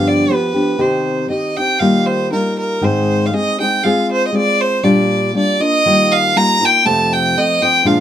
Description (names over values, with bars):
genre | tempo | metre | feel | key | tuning
mexican folk, mariachi | 119 BPM | 2/4 | straight | Eb major | A4 = 437 Hz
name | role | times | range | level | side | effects
clear violin | melody | 0.0-8.0 s | Bb4 to Bb5 | -15 LUFS | right 1 dB | none
nylon-string guitar | accompaniment | 0.0-8.0 s | F2 to Ab4 | -16 LUFS | left 1 dB | none
room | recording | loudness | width
light reverb | close, detailed microphones | -12 LUFS | side -10 dB against mid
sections
0.0-1.8 A section; 1.8-8.0 B section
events
none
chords
0.0 G7; 0.8 Cm; 1.8 Ebadd9; 2.8 Ab; 3.8 Fm/Ab; 4.8 Bb6; 5.8 Ebadd9; 6.8 F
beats
0.29 | 0.79 1.30 | 1.81 2.32 | 2.83 3.33 | 3.83 4.33 | 4.83 5.33 | 5.84 6.35 | 6.85 7.35 | 7.86